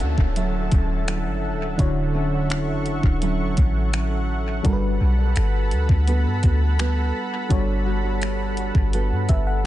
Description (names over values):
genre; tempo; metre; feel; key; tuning
contemporary R&B; 84 BPM; 4/4; straight; D major; A4 = 438 Hz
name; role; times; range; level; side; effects
FM electric piano with auto-pan; accompaniment; 0.0-9.7 s; D3 to F#5; -29 LUFS; left 2 dB; dub echo
lush unison pad; sustained chords; 0.0-9.7 s; A4 to C#6; -30 LUFS; equal; chorus, sidechain pumping
nylon-string guitar; arpeggios; 0.0-9.7 s; D3 to A4; -28 LUFS; right 5 dB; dub echo
clean 808-style bass; bass; 0.0-9.7 s; D1 to G2; -22 LUFS; equal; none
clean 12-bit digital drum machine; drums; 0.0-9.5 s; finger snaps, hi-hat, kick drum; -21 LUFS; equal; overdrive
downlifter; sound effects; 0.0-4.6 s; none; -39 LUFS; left 1 dB; none
room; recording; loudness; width
digital ambience; echo-heavy mix, nothing above 10.5 kHz; -19 LUFS; side -14 dB against mid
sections
0.0-9.7 A section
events
FM electric piano fill 8.9-9.7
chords
0.0 Dmaj9; 4.6 Gmaj9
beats
0.36 1.08 | 1.79 2.50 3.22 3.93 | 4.65 5.36 6.08 6.79 | 7.50 8.22 8.93 9.65